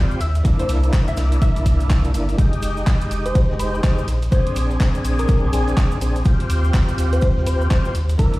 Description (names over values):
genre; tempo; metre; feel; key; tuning
deep house; 124 BPM; 4/4; swing 60% on 16ths; unclear; A4 = 437 Hz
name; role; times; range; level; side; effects
overdriven tonewheel organ; stabs; 0.0-8.4 s; Ab3 to Ab4; -25 LUFS; equal; chorus vibrato, slow rotary speaker, sidechain pumping
cabasa; percussion; 0.1-8.4 s; none; -43 LUFS; right 1 dB; none
soft round pluck; melody; 0.2-2.3 s; C5 to E5; -30 LUFS; left 2 dB; ensemble chorus, digital delay
round analog bass; bass; 0.2-8.2 s; F1 to Eb2; -19 LUFS; equal; tube saturation, sidechain pumping
dusty soul sampler-style drum kit; drums; 0.2-8.3 s; ride cymbal, snare drum; -40 LUFS; equal; none
house drum kit; drums; 0.2-8.4 s; handclaps, hi-hat; -32 LUFS; equal; none
electronic kick drum; drums; 0.4-8.3 s; none; -16 LUFS; equal; none
soft struck synth lead; melody; 3.3-8.4 s; Ab4 to C5; -27 LUFS; left 2 dB; chorus, digital delay
room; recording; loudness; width
light reverb, digital ambience; played on a big sound system in a bare room, large studio reverb, vinyl crackle; -16 LUFS; side -19 dB against mid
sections
0.0-8.4 A section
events
none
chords
0.4 C9; 2.4 Fm9; 4.1 Bb9; 6.3 Eb6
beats
| 0.45 0.93 1.42 1.90 | 2.38 2.87 3.35 3.84 | 4.32 4.80 5.29 5.77 | 6.25 6.74 7.22 7.71 | 8.19